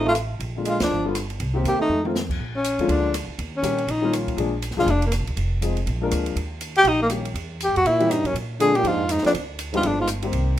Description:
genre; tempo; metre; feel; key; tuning
jazz, small-group swing and bop; 242 BPM; 4/4; swing 60% on 8ths; Bb mixolydian; A4 = 439 Hz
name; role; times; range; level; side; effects
breathy tenor saxophone; melody; 0.0-10.1 s; Bb3 to Ab4; -20 LUFS; left 1 dB; none
warm trombone; second line; 0.0-2.0, 7.8-10.1 s; F2 to Bb3; -26 LUFS; right 4 dB; none
warm baby grand piano; accompaniment; 0.0-10.6 s; D3 to Bb4; -26 LUFS; left 4 dB; none
upright bass; bass; 0.0-10.6 s; F1 to Bb2; -27 LUFS; right 1 dB; none
open jazz drum kit; drums; 0.1-10.4 s; crash cymbal, hi-hat, kick drum, ride cymbal, rim click, snare drum, toms; -32 LUFS; right 1 dB; none
room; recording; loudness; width
moderate large studio reverb, RT60 0.8 s; minimal, uncompressed stereo recording; -20 LUFS; side -12 dB against mid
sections
0.0-2.4 A section; 2.4-10.6 A section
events
band accent 0.8; drum fill 1.9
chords
0.4 Bb7; 0.9 G7; 1.4 Cm7; 1.9 F7; 2.4 Bb7; 3.4 Eb7; 4.4 Bb7; 5.4 Fm7; 5.9 Bb7; 6.4 Eb7; 7.4 Edim; 8.3 Bb7; 9.3 Dm; 9.8 Gm7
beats
0.16 | 0.41 0.66 0.91 1.15 | 1.40 1.65 1.90 2.15 | 2.40 2.64 2.89 3.14 | 3.39 3.64 3.88 4.13 | 4.38 4.63 4.88 5.12 | 5.37 5.62 5.87 6.12 | 6.37 6.61 6.86 7.11 | 7.36 7.61 7.85 8.10 | 8.35 8.60 8.85 9.09 | 9.34 9.59 9.84 10.09 | 10.33 10.58

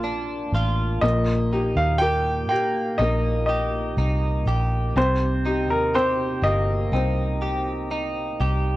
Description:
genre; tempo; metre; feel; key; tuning
pop; 61 BPM; 4/4; straight; unclear; A4 = 436 Hz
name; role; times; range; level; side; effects
felt-muted upright piano; accompaniment; 0.0-8.8 s; Bb3 to Bb4; -28 LUFS; left 2 dB; none
direct-recorded clean electric guitar; arpeggios; 0.0-8.8 s; Bb2 to G4; -28 LUFS; right 1 dB; wide subtle chorus
vintage muted fingered electric bass; bass; 0.0-8.8 s; G1 to Bb2; -24 LUFS; equal; none
clear baby grand piano; melody; 1.0-7.9 s; Bb4 to G5; -24 LUFS; equal; none
room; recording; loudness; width
light reverb; dry, gritty hardware recording, transformer saturation; -20 LUFS; side -16 dB against mid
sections
0.0-8.8 A section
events
none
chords
0.0 Bb; 1.0 Eb/Bb; 5.0 Cm7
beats
0.05 | 1.03 2.02 3.00 3.98 | 4.96 5.95 6.93 7.92

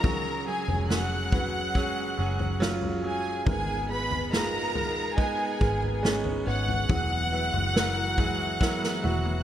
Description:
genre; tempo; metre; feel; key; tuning
pop ballad; 70 BPM; 4/4; straight; F# major; A4 = 440 Hz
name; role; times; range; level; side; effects
warm symphonic violin section; melody; 0.0-9.4 s; G#4 to F#6; -30 LUFS; equal; none
clear concert grand piano; accompaniment; 0.0-9.4 s; G#2 to C#5; -32 LUFS; right 3 dB; none
clear studio string section; sustained chords; 0.0-9.4 s; B2 to G#4; -38 LUFS; left 2 dB; none
picked steel-string acoustic guitar; arpeggios; 0.0-9.4 s; G#2 to A#4; -40 LUFS; left 5 dB; none
vintage muted fingered electric bass; bass; 0.0-9.4 s; E1 to G#1; -31 LUFS; equal; none
unplugged drum kit; drums; 0.0-9.4 s; kick drum, snare drum, toms; -29 LUFS; equal; none
room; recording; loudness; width
moderate plate reverb, RT60 3.4 s; bright 1980s-style digital production; -25 LUFS; side -11 dB against mid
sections
0.0-9.4 A section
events
drum fill 8.6-9.4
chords
0.0 F#sus2; 3.5 G#madd9; 6.9 Eadd9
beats
| 0.04 0.90 1.75 2.61 | 3.47 4.32 5.18 6.04 | 6.90 7.75 8.61

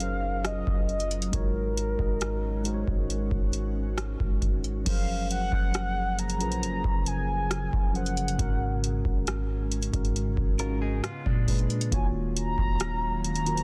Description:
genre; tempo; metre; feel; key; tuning
contemporary R&B; 68 BPM; 4/4; straight; unclear; A4 = 439 Hz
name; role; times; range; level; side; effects
mellow horn-like synth lead; melody; 0.0-13.6 s; Bb4 to Bb5; -35 LUFS; equal; chorus
mellow tine electric piano; accompaniment; 0.0-13.6 s; Ab2 to F5; -35 LUFS; equal; none
ethereal airy pad; sustained chords; 0.0-13.6 s; Db3 to F5; -42 LUFS; equal; ensemble chorus, built-in reverb
soft 808-style bass; bass; 0.0-13.6 s; Eb1 to Bb2; -33 LUFS; equal; none
booming analog drum machine; drums; 0.0-13.6 s; crash cymbal, hi-hat, kick drum, rim click; -31 LUFS; equal; none
direct-recorded clean electric guitar; arpeggios; 10.6-11.9 s; Ab3 to Bb4; -41 LUFS; equal; spring reverb, digital delay
room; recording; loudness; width
little or no reverb; dense, heavily limited modern master; -28 LUFS; mono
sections
0.0-4.9 A section; 4.9-13.6 B section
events
none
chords
0.0 Gb6; 1.3 Ab9sus4; 4.9 Gbmaj9#11; 8.4 Ab9sus4; 11.0 Bb7b9; 11.9 Ebm9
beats
0.45 | 1.33 2.21 3.10 3.98 | 4.86 5.74 6.63 7.51 | 8.39 9.27 10.16 11.04 | 11.92 12.80

